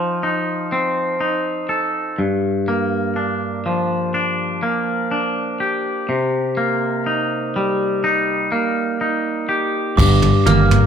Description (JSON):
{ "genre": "post-rock", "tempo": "62 BPM", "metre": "4/4", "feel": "straight", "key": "G minor", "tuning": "A4 = 440 Hz", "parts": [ { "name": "twangy electric guitar", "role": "arpeggios", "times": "0.0-10.9 s", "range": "G2 to A4", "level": "-18 LUFS", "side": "equal", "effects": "none" }, { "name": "glockenspiel with soft plastic mallets", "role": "arpeggios", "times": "10.0-10.9 s", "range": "D6 to F6", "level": "-21 LUFS", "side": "right 8 dB", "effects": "none" }, { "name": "growling fingered electric bass", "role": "bass", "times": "10.0-10.8 s", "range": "G1", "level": "-15 LUFS", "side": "right 1 dB", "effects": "overdrive" }, { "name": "jazz brush drum kit", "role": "drums", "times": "10.0-10.9 s", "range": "crash cymbal, kick drum, toms", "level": "-16 LUFS", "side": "equal", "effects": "none" } ], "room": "moderate large studio reverb, RT60 1.1 s", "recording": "band playing live in one room", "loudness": "-17 LUFS", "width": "side -8 dB against mid", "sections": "0.0-10.0 A section", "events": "none", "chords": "0.0 F7; 2.2 Gm7; 6.1 Cm7; 10.0 Gm7", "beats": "0.25 1.22 | 2.19 3.17 4.14 5.12 | 6.09 7.06 8.04 9.01 | 9.98" }